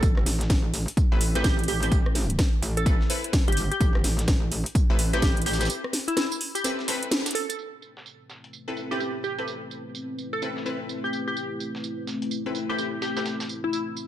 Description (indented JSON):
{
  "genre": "bass house",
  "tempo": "127 BPM",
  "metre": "4/4",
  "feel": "swing 62% on 16ths",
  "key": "A minor",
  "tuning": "A4 = 441 Hz",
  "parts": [
    { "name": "metallic wobble bass", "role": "bass", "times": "0.0-5.7 s", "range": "G1 to A1", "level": "-27 LUFS", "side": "equal", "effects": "chorus, sidechain pumping" },
    { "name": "breakbeat sampler-style drum kit", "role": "drums", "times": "0.0-14.1 s", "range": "hi-hat, snare drum, tambourine", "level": "-36 LUFS", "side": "right 4 dB", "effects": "sidechain pumping on perc, high-pass filter on perc, low-pass filter on perc, high-pass filter on snare, low-pass filter on snare, sidechain pumping on hats, high-pass filter on hats, low-pass filter on hats" },
    { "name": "electronic kick drum", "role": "drums", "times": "0.0-5.3 s", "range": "none", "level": "-23 LUFS", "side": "equal", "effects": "overdrive" },
    { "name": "house drum kit", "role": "drums", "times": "0.0-7.6 s", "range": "hi-hat, rim click, snare drum", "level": "-28 LUFS", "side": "equal", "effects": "overdrive" },
    { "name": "orchestra-hit-like synth stab", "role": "stabs", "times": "1.1-13.2 s", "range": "C4 to B4", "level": "-32 LUFS", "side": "left 2 dB", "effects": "built-in reverb, sidechain pumping, tape echo" },
    { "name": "glassy wavetable pluck", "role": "melody", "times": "1.4-13.8 s", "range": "E4 to A4", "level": "-30 LUFS", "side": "equal", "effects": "chorus, tape echo" },
    { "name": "dark analog pad", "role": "sustained chords", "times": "8.7-14.1 s", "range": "A3 to B4", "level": "-33 LUFS", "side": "left 1 dB", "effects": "chorus, sidechain pumping" }
  ],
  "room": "digital ambience",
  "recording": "none",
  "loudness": "-23 LUFS",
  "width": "side -12 dB against mid",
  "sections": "0.0-7.6 A section; 7.6-14.1 B section",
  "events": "break 5.7-7.6; band accent 7.1",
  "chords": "0.0 Amadd9"
}